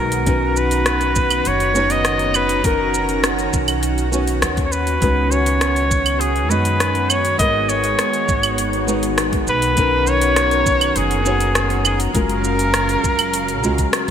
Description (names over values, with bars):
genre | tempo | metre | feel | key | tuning
sunset chillout | 101 BPM | 4/4 | straight | B lydian | A4 = 440 Hz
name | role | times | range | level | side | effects
clear flugelhorn | melody | 0.0-13.9 s | G#4 to D#5 | -20 LUFS | equal | ping-pong delay
nylon-string guitar | accompaniment | 0.0-14.1 s | G#3 to D#5 | -23 LUFS | moving between left 6 dB and right 4 dB | auto-pan, ping-pong delay
lush unison pad | sustained chords | 0.0-14.1 s | C#3 to A#5 | -24 LUFS | equal | chorus
upright bass | bass | 0.0-13.9 s | F#1 to F#2 | -23 LUFS | equal | none
smooth R&B drum kit | drums | 0.1-14.1 s | claves, hi-hat, rim click, shaker | -22 LUFS | right 1 dB | gated reverb
electronic kick drum | drums | 0.3-14.1 s | none | -21 LUFS | equal | none
room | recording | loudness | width
moderate lush hall reverb, RT60 3.3 s | bright 1980s-style digital production | -15 LUFS | side -8 dB against mid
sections
0.0-14.1 A section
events
none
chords
0.3 Bmaj7; 5.0 C#9sus4; 7.4 G#m7; 9.8 Bmaj7; 12.2 F#maj7